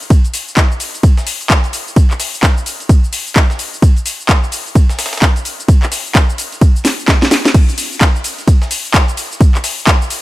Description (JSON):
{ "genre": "house", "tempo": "129 BPM", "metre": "4/4", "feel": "swing 61% on 16ths", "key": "none", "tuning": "none", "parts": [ { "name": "house drum kit", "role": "drums", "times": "0.0-10.2 s", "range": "crash cymbal, handclaps, hi-hat, ride cymbal, shaker, snare drum", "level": "-16 LUFS", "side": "left 1 dB", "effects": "overdrive" }, { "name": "breakbeat sampler-style drum kit", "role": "drums", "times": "0.1-10.2 s", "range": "ride cymbal, snare drum", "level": "-27 LUFS", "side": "right 1 dB", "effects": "high-pass filter on snare, high-pass filter on cymbals, high-pass filter on room" }, { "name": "electronic kick drum", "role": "drums", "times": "0.1-10.0 s", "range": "none", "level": "-10 LUFS", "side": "equal", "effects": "overdrive" } ], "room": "little or no reverb", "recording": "none", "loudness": "-11 LUFS", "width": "side -17 dB against mid", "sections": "0.0-10.2 A section", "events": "drum fill 6.8-7.5", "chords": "none" }